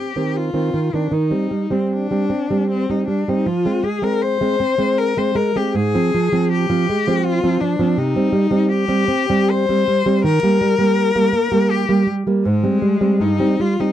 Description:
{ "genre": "romantic duo for cello and classical guitar", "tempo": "80 BPM", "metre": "3/4", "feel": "uneven beats, rubato", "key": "C minor", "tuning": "A4 = 442 Hz", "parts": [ { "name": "rich cello", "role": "melody", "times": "0.0-13.9 s", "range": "Ab3 to C5", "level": "-20 LUFS", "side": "left 6 dB", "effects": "none" }, { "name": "nylon-string guitar", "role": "accompaniment", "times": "0.0-13.9 s", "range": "G2 to C4", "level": "-17 LUFS", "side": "right 2 dB", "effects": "none" } ], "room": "light reverb", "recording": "dry, close 1970s-style studio recording", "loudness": "-15 LUFS", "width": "side -11 dB against mid", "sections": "0.0-13.9 A section", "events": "none", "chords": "0.0 Cm; 1.1 Cm/Eb; 3.5 Fm (rootless); 5.8 Fm/Ab; 8.0 Cm; 10.2 Eb (rootless); 12.5 Abmaj7; 13.2 Cm/G", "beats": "0.38 | 1.14 1.93 2.71 | 3.47 4.22 4.99 | 5.75 6.51 7.25 | 7.97 8.68 9.50 | 10.24 10.98 11.71 | 12.45 13.21" }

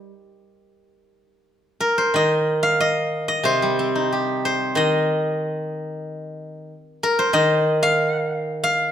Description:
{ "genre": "chinese traditional, Chinese solo plucked strings", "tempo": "91 BPM", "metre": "4/4", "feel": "rubato", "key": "unclear", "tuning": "A4 = 442 Hz", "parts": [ { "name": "steel-string zither", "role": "solo", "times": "0.0-8.9 s", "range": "C3 to G5", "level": "-19 LUFS", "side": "equal", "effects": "none" } ], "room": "moderate recital hall reverb, RT60 1.7 s", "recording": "minimal, uncompressed stereo recording", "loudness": "-18 LUFS", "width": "side -9 dB against mid", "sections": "0.8-8.9 A section", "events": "none", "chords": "none", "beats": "0.10 | 0.80 1.48 2.15 2.81 | 3.46 4.12 4.78 5.43 | 6.08 6.72 7.37 8.02 | 8.69" }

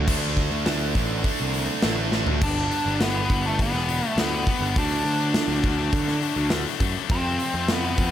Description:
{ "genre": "quiet-loud alternative rock", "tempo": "102 BPM", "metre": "4/4", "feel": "straight", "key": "G major", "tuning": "A4 = 441 Hz", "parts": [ { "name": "distorted electric guitar", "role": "riff", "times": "0.0-2.4 s", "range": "D3 to D4", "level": "-28 LUFS", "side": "right 17 dB", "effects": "overdrive" }, { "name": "high-gain distorted guitar", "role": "riff", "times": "0.0-8.1 s", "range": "F2 to D4", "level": "-29 LUFS", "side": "left 13 dB", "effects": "distortion" }, { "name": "fuzz picked electric bass", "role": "bass", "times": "0.0-8.1 s", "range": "E1 to D3", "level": "-27 LUFS", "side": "equal", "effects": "overdrive" }, { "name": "big rock drum kit", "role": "drums", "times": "0.1-8.1 s", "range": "crash cymbal, hi-hat, kick drum, snare drum, toms", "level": "-26 LUFS", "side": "equal", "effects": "none" }, { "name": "nasal lead guitar with a parked wah", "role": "melody", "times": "2.4-8.1 s", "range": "A3 to D4", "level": "-25 LUFS", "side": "right 1 dB", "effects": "overdrive, slapback echo" } ], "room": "little or no reverb", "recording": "none", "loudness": "-21 LUFS", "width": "side -11 dB against mid", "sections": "0.1-2.4 A section; 2.4-8.1 B section", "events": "drum fill 2.1", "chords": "0.1 D5; 2.4 G; 4.8 D; 7.1 F", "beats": "| 0.08 0.67 1.25 1.84 | 2.42 3.00 3.59 4.17 | 4.76 5.34 5.93 6.52 | 7.10 7.69" }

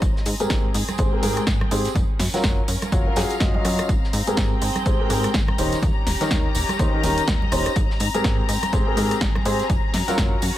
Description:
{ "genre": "piano house", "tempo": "124 BPM", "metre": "4/4", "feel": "swing 58% on 16ths", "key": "Ab major", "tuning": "A4 = 440 Hz", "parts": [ { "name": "plucky analog bass", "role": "bass", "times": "0.0-10.5 s", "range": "Eb1 to Ab2", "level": "-26 LUFS", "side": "equal", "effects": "tube saturation, sidechain pumping" }, { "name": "electronic kick drum", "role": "drums", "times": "0.0-10.3 s", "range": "none", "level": "-23 LUFS", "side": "equal", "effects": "none" }, { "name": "house drum kit", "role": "drums", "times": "0.0-10.5 s", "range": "hi-hat, rim click, snare drum", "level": "-28 LUFS", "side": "equal", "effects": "none" }, { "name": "warm soul drum kit", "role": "drums", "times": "0.0-10.6 s", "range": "hi-hat, snare drum", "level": "-36 LUFS", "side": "equal", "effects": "none" }, { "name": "congas and tambourine", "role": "percussion", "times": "0.0-10.5 s", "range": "none", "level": "-32 LUFS", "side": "right 4 dB", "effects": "none" }, { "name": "dark symphonic string section", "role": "texture", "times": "0.0-10.6 s", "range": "C4 to Bb5", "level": "-29 LUFS", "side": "left 3 dB", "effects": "sidechain pumping" }, { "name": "clear grand piano", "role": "riff", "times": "0.4-10.3 s", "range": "Ab2 to Eb5", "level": "-25 LUFS", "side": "equal", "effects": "sidechain pumping, low-pass filter, digital delay" } ], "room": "studio ambience", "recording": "none", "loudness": "-19 LUFS", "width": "side -13 dB against mid", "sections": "0.0-10.6 A section", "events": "none", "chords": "0.0 Abmaj9; 2.0 Gbmaj7; 3.9 Abmaj9; 5.6 Eb7; 7.8 Abmaj9; 9.7 Gbmaj7", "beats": "| 0.02 0.50 0.99 1.47 | 1.96 2.44 2.92 3.41 | 3.89 4.37 4.86 5.34 | 5.83 6.31 6.79 7.28 | 7.76 8.24 8.73 9.21 | 9.70 10.18" }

